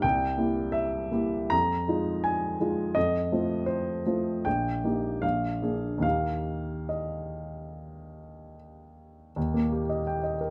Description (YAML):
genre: classical, romantic character piece for solo piano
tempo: 70-89 BPM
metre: 4/4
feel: rubato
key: Eb major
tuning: A4 = 441 Hz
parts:
  - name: warm baby grand piano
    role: solo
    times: 0.0-10.5 s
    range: Bb1 to Bb5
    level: -29 LUFS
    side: equal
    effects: none
room: little or no reverb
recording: close, detailed microphones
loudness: -28 LUFS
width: mono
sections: 0.0-9.4 A section; 9.4-10.5 B section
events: none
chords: 0.0 C7; 1.5 Fm7; 3.0 F7; 4.5 Eb/Bb; 5.2 Bb7; 6.0 Eb